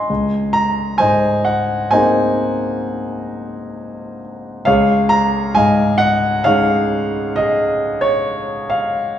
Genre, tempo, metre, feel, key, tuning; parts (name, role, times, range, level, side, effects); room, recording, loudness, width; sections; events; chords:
classical, impressionist solo piano; 54-68 BPM; 5/4; rubato; A4 = 440 Hz
warm concert grand piano; solo; 0.0-9.2 s; Db2 to Db6; -15 LUFS; equal
wet recital hall reverb, RT60 1.6 s; recorded in a church or concert hall; -14 LUFS; side -10 dB against mid
0.0-9.2 A section
0.1 Abadd9/Db; 4.7 Dbadd9